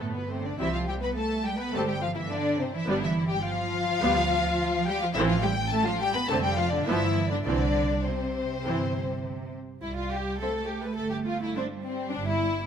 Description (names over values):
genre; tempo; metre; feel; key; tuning
quick classical-period movement for string orchestra; 104 BPM; 4/4; straight; C major; A4 = 440 Hz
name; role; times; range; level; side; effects
warm studio violin section; melody; 0.0-11.6 s; B4 to B5; -30 LUFS; left 5 dB; none
warm studio violin section; second line; 0.0-12.7 s; A3 to B4; -31 LUFS; left 4 dB; none
warm studio viola section; accompaniment; 0.0-11.6 s; D3 to C5; -31 LUFS; right 2 dB; none
dark studio double bass section; bass; 0.0-12.6 s; F1 to D2; -33 LUFS; right 3 dB; none
rich symphonic cello section; bass; 0.0-12.7 s; A2 to B3; -32 LUFS; right 3 dB; none
room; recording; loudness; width
light reverb; close, detailed microphones; -25 LUFS; side -8 dB against mid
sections
0.0-9.8 A section; 9.8-12.7 A section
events
none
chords
0.0 G; 0.6 C; 2.9 G7; 5.1 Am; 6.3 Dm7/F; 6.9 G7; 7.5 C; 9.8 C5; 12.1 G5